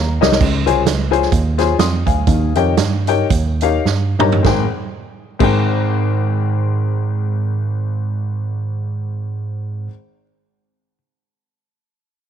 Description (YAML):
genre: uptempo gospel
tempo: 99-133 BPM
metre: 4/4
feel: swing 58% on 8ths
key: Ab major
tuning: A4 = 440 Hz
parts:
  - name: bell-like tine electric piano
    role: bass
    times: 0.0-9.9 s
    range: C2 to Ab2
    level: -18 LUFS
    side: right 2 dB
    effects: none
  - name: warm upright piano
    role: accompaniment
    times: 0.2-9.9 s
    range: Ab1 to Eb6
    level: -19 LUFS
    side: left 10 dB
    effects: none
  - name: swinging big-band drum kit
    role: drums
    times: 0.2-5.5 s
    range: crash cymbal, hi-hat, kick drum, snare drum, toms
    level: -19 LUFS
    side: right 6 dB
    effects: none
room: light reverb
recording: 1960s-style stereo with parts hard left and right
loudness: -15 LUFS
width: side -8 dB against mid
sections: 0.4-4.4 A section; 4.4-9.3 B section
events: drum fill 0.0-0.4, 3.9-4.4; slowing down 0.4-4.4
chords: 0.4 Dbmaj7; 2.3 Eb7; 4.4 Abmaj9